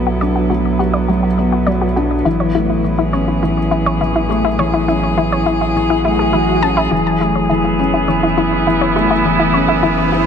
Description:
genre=piano and strings electronica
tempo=103 BPM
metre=4/4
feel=straight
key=F# minor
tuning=A4 = 439 Hz
part: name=muted string quartet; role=sustained chords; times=0.0-10.3 s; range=F#3 to A4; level=-18 LUFS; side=right 2 dB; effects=low-pass filter
part: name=felt-muted upright piano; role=riff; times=0.0-10.3 s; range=E3 to F#4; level=-17 LUFS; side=left 2 dB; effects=ping-pong delay
part: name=warm sub bass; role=bass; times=0.0-10.3 s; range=F#1 to B1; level=-22 LUFS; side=right 1 dB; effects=tube saturation
part: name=analog pluck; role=arpeggios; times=0.1-10.2 s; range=E4 to A5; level=-20 LUFS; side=left 2 dB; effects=chorus, ping-pong delay
part: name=swell and riser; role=sound effects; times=6.0-10.3 s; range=none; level=-26 LUFS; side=right 3 dB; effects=none
room=moderate huge ambient reverb, RT60 4.0 s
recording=none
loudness=-13 LUFS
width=side -7 dB against mid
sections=0.0-6.9 A section; 6.9-10.3 B section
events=filter sweep on synth arpeggio sound 0.0-6.9, 6.9-10.3; swell 6.0-6.9; build-up 6.9-10.3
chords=0.0 Bm7; 2.3 Amaj7; 6.9 F#m7

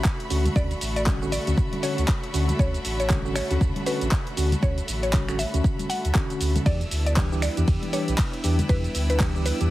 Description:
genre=deep house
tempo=118 BPM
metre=4/4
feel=swing 59% on 16ths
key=unclear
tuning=A4 = 440 Hz
part: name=mallet-like synth pluck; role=melody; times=0.0-9.7 s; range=B4 to F#5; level=-32 LUFS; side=equal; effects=chorus, digital delay
part: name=airy breathy pad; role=sustained chords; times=0.0-9.7 s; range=G3 to C#6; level=-34 LUFS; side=right 1 dB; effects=chorus, sidechain pumping
part: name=deep house drum kit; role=drums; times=0.0-9.7 s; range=finger snaps, handclaps, hi-hat, ride cymbal, shaker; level=-31 LUFS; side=equal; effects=none
part: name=bright studio string section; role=texture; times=0.0-9.7 s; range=D3 to G5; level=-38 LUFS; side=equal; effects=sidechain pumping
part: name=clear chamber violin section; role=texture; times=0.0-9.7 s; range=B5 to E6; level=-41 LUFS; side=right 1 dB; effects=none
part: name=electronic kick drum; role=drums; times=0.1-9.3 s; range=none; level=-23 LUFS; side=equal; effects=none
part: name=tine electric piano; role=stabs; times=0.3-9.7 s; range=D3 to G4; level=-30 LUFS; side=equal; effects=overdrive, fast stereo tremolo, sidechain pumping, digital delay
part: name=sub bass with octave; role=bass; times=0.3-9.7 s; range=A1 to E2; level=-25 LUFS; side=equal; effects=sidechain pumping
part: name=congas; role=percussion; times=0.4-9.3 s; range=none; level=-34 LUFS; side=left 1 dB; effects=none
room=little or no reverb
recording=heavily compressed radio sound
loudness=-21 LUFS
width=side -16 dB against mid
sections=0.0-9.7 A section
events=none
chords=0.0 Dmaj7; 6.7 Em7

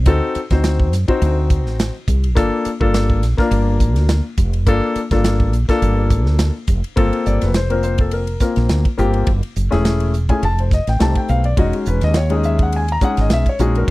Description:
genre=electric jazz fusion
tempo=104 BPM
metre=4/4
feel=swing 54% on 16ths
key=G minor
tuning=A4 = 440 Hz
part: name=woody fretless electric bass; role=bass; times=0.0-13.9 s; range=E1 to F#2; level=-17 LUFS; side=equal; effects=ensemble chorus
part: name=warm concert grand piano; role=accompaniment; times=0.1-13.9 s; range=G#3 to Bb5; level=-19 LUFS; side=left 3 dB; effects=none
part: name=modern studio drum kit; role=drums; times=0.1-13.9 s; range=hi-hat, kick drum, ride cymbal, snare drum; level=-19 LUFS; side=right 1 dB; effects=none
room=little or no reverb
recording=dry, close 1970s-style studio recording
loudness=-14 LUFS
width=side -19 dB against mid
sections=0.0-7.0 A section; 7.0-13.9 B section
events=none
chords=0.1 D7b9; 2.4 Gm9; 7.0 Gm11; 9.3 F#m7; 10.4 F9; 11.6 Emaj13

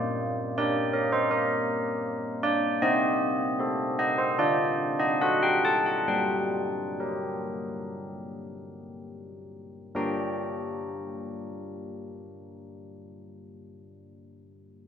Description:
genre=classical, tune for church bells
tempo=58-81 BPM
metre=4/4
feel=straight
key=G minor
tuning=A4 = 440 Hz
part: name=carillon bells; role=solo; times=0.0-13.3 s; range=G3 to Bb5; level=-26 LUFS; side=equal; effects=none
room=moderate scoring stage reverb, RT60 2.0 s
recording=none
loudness=-25 LUFS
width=side -8 dB against mid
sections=0.0-9.9 A section; 9.9-14.0 B section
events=slowing down 1.3-9.9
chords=0.0 Gm/Bb; 2.8 Am7b5/C; 4.4 D7; 6.1 Gm

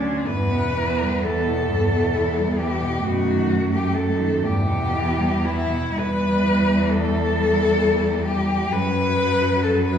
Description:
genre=classical, lyrical piece for cello ensemble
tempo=43 BPM (dotted quarters)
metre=6/8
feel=uneven beats, rubato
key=unclear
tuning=A4 = 440 Hz
part: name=rich cello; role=melody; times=0.0-10.0 s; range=D4 to B4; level=-22 LUFS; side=left 3 dB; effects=none
part: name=dark cello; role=second line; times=0.0-10.0 s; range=F#3 to C#4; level=-27 LUFS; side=right 5 dB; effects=none
part: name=clear cello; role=accompaniment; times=0.0-10.0 s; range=G2 to A3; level=-25 LUFS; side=left 1 dB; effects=none
part: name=rich cello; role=bass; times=0.0-10.0 s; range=D2 to F#2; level=-24 LUFS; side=right 1 dB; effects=none
room=wet recital hall reverb, RT60 1.6 s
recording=heard from further back in the room, small room reverb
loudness=-18 LUFS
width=side -8 dB against mid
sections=0.0-10.0 A section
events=none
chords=0.3 Em; 3.0 B7/F#; 4.4 Em; 8.7 F#sus4

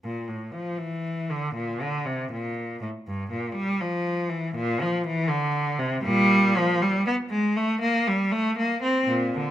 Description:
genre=classical, baroque-style suite movement for unaccompanied cello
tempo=80 BPM (dotted quarters)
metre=6/8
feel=rubato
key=unclear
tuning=A4 = 440 Hz
part: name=rich cello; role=solo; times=0.0-9.5 s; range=G2 to C4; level=-23 LUFS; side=equal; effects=none
room=moderate large studio reverb, RT60 1.3 s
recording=none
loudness=-23 LUFS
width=side -11 dB against mid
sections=0.0-9.5 A section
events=none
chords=none

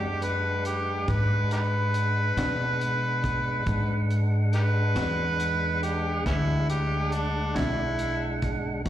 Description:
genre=slow blues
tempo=46 BPM (dotted quarters)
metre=12/8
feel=straight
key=E mixolydian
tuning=A4 = 441 Hz
part: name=overdriven harmonica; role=melody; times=0.0-8.4 s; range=B3 to B4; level=-29 LUFS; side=equal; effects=slapback echo
part: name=electric guitar through a small old amp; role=accompaniment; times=0.0-7.8 s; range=E3 to F#4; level=-36 LUFS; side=left 4 dB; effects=tremolo, slapback echo
part: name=tonewheel organ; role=sustained chords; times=0.0-8.9 s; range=G#3 to F#5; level=-33 LUFS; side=right 1 dB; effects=slow rotary speaker
part: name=upright bass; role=bass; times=0.0-8.9 s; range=E1 to B2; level=-27 LUFS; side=equal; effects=none
part: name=crunchy breakbeat drum kit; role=drums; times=0.2-8.9 s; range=hi-hat, kick drum, snare drum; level=-34 LUFS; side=equal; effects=none
room=small room reverb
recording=live gig heard through the venue's PA, recital hall reverb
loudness=-24 LUFS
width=side -12 dB against mid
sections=0.0-8.9 A section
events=harmonica solo 0.0-8.9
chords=0.0 E9

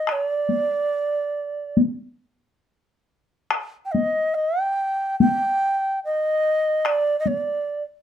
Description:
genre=japanese traditional, Japanese chamber music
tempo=71 BPM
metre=4/4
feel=rubato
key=unclear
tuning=A4 = 440 Hz
part: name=breathy bright long shakuhachi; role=melody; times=0.0-7.8 s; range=D5 to G5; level=-21 LUFS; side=right 1 dB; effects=none
part: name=taiko ensemble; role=percussion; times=0.1-7.5 s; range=none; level=-20 LUFS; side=left 3 dB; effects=none
room=light reverb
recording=none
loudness=-20 LUFS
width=side -10 dB against mid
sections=0.0-8.0 A section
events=none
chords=none

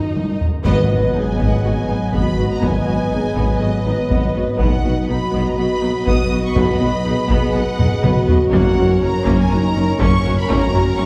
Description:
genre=cinematic, hybrid orchestral and electronic film score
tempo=122 BPM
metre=4/4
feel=straight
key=G# minor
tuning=A4 = 440 Hz
part: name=clear studio violin section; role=second line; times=0.0-11.1 s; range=A#4 to A#5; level=-33 LUFS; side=equal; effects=none
part: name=warm chamber viola section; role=accompaniment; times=0.0-11.1 s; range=F#3 to F#4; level=-27 LUFS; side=equal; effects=none
part: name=hollow soft pad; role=sustained chords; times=0.0-11.1 s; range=D#3 to D#5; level=-26 LUFS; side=equal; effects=chorus
part: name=clear symphonic cello section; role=bass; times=0.0-11.1 s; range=F#2 to D#4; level=-28 LUFS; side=equal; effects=none
part: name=taiko ensemble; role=drums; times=0.2-11.0 s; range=none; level=-23 LUFS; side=equal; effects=none
part: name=clear symphonic violin section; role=melody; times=0.6-11.1 s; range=D#5 to D#6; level=-29 LUFS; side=equal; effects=none
part: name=dark French horn section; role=sustained chords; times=0.7-11.1 s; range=C#4 to B4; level=-25 LUFS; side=equal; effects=none
part: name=rich symphonic double bass section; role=bass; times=0.7-11.1 s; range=F#1 to B1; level=-26 LUFS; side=equal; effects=none
part: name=warm tuba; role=bass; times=0.7-11.1 s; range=F#1 to B1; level=-26 LUFS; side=equal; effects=none
part: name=impact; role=sound effects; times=0.7-2.6 s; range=none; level=-28 LUFS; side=equal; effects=none
room=wet recital hall reverb, RT60 1.6 s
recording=heard from further back in the room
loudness=-17 LUFS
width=mono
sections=0.7-11.1 A section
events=drum fill 0.0-0.7, 7.8-8.5; band accent 0.7-1.1; impact 0.7-2.6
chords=0.0 D#m7; 0.7 G#m7; 4.6 B; 8.5 F#

